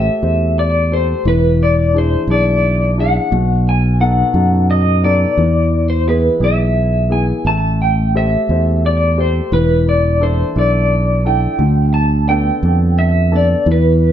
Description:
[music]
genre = acoustic folk-pop ballad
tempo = 58 BPM (dotted quarters)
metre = 6/8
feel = straight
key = unclear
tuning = A4 = 436 Hz
[part]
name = electric guitar through a small old amp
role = melody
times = 0.0-14.1 s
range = B4 to A5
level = -17 LUFS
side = left 1 dB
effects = tremolo, slapback echo, plate reverb
[part]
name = warm upright piano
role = accompaniment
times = 0.0-14.1 s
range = B2 to C5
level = -20 LUFS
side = left 3 dB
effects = none
[part]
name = fingered electric bass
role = bass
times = 0.0-14.1 s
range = E1 to F#2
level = -14 LUFS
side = right 1 dB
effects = none
[sound]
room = light reverb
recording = dark, warm production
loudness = -12 LUFS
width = side -10 dB against mid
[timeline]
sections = 0.0-14.1 A section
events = none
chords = 0.0 Am7; 1.3 E7; 3.3 B7; 5.4 E; 7.5 Am7; 9.5 E7sus4; 11.6 Bm7b5/D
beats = 0.22 | 1.25 2.29 | 3.32 4.35 | 5.38 6.42 | 7.45 8.49 | 9.53 10.56 | 11.60 12.63 | 13.67

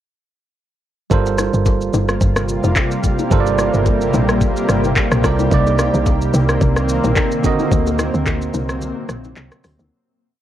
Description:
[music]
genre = amapiano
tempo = 109 BPM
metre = 4/4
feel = swing 55% on 16ths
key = G minor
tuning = A4 = 440 Hz
[part]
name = bell-like tine electric piano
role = accompaniment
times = 1.1-9.9 s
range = C3 to Eb5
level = -21 LUFS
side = right 7 dB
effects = cassette tape
[part]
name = granular cloud pad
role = sustained chords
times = 1.9-9.9 s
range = C3 to G4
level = -20 LUFS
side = left 1 dB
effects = built-in reverb, cassette tape
[part]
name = woody log drum bass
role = bass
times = 1.1-9.9 s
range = F1 to D2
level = -19 LUFS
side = equal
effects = none
[part]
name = smooth R&B drum kit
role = drums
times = 1.1-9.9 s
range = handclaps, hi-hat, kick drum, rim click, shaker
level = -18 LUFS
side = equal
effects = cassette tape
[part]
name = congas and bongos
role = percussion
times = 1.1-9.9 s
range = none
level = -26 LUFS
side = left 9 dB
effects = none
[sound]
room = light reverb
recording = home recording on cassette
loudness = -14 LUFS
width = side -12 dB against mid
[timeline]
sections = 1.1-9.9 drop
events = drop 1.1-9.9; fade-out 7.7-9.9; break 8.8-9.9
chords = 1.1 Gm11; 5.5 Cm9; 7.4 D7b9b13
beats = | 1.11 1.66 2.21 2.76 | 3.31 3.86 4.41 4.96 | 5.51 6.06 6.61 7.16 | 7.71 8.27 8.81 9.37

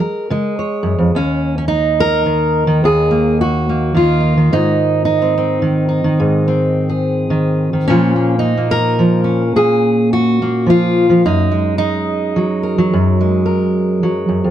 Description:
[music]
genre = folk, solo fingerstyle acoustic guitar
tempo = 71 BPM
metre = 4/4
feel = swing 62% on 8ths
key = Eb dorian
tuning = A4 = 438 Hz
[part]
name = fingerpicked steel-string acoustic guitar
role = solo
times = 0.0-14.5 s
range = Eb2 to Db5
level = -12 LUFS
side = equal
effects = none
[sound]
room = light reverb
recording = none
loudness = -12 LUFS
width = side -11 dB against mid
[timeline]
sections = 0.0-1.2 A section; 1.2-14.5 B section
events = none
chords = 0.0 Gbadd9; 1.2 Eb5; 4.5 Ab; 7.9 Bbm; 11.3 Gbadd9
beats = 0.32 | 1.16 2.00 2.84 3.68 | 4.53 5.37 6.21 7.05 | 7.89 8.73 9.57 10.41 | 11.25 12.09 12.93 13.77

